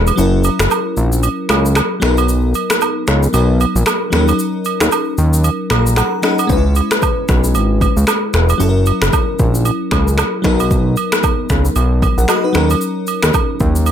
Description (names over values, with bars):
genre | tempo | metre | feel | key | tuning
afrobeats | 114 BPM | 4/4 | swing 58% on 16ths | B major | A4 = 442 Hz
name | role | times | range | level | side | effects
crystalline FM electric piano | accompaniment | 0.0-13.9 s | E#3 to A#5 | -19 LUFS | left 2 dB | chorus
fat analog bass | bass | 0.0-13.9 s | E1 to D#2 | -14 LUFS | equal | none
deep house drum kit | drums | 0.1-13.9 s | finger snaps, kick drum, rim click, shaker | -17 LUFS | equal | overdrive
agogo bells and woodblock | percussion | 0.1-13.9 s | none | -22 LUFS | right 13 dB | none
room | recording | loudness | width
little or no reverb | none | -12 LUFS | side -9 dB against mid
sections
0.0-13.9 A section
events
break 0.0-6.5; FM electric piano fill 5.4-6.5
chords
0.2 F#7; 2.0 Bmaj7; 4.1 D#m7; 6.5 C#m7; 8.6 F#7; 10.4 Bmaj7; 12.6 D#m7